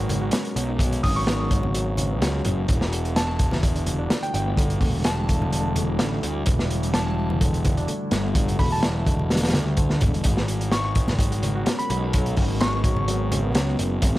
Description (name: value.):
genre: breakbeat, breaks.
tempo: 127 BPM.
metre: 4/4.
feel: swing 53% on 16ths.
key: unclear.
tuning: A4 = 440 Hz.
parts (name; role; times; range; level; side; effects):
deep dark ambient pad; sustained chords; 0.0-14.2 s; G3 to D5; -32 LUFS; equal; chorus, built-in reverb, vintage 12-bit sampler grit, sidechain pumping.
overdriven reed electric piano; riff; 0.0-14.2 s; D3 to F#4; -30 LUFS; equal; fast tremolo, tube saturation.
fuzz picked electric bass; bass; 0.0-14.2 s; E1 to D2; -25 LUFS; equal; overdrive.
crunchy breakbeat drum kit; drums; 0.1-14.2 s; hi-hat, kick drum, snare drum; -23 LUFS; equal; none.
congas; percussion; 0.1-13.4 s; none; -31 LUFS; equal; none.
soft synth bell; melody; 1.0-13.3 s; G5 to D#6; -32 LUFS; equal; chorus, small speaker sound, dub echo.
room: small room ambience.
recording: vinyl crackle.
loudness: -20 LUFS.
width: side -17 dB against mid.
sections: 0.0-14.2 A section.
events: none.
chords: 0.0 G#m9; 2.7 Em9; 10.2 G#m9.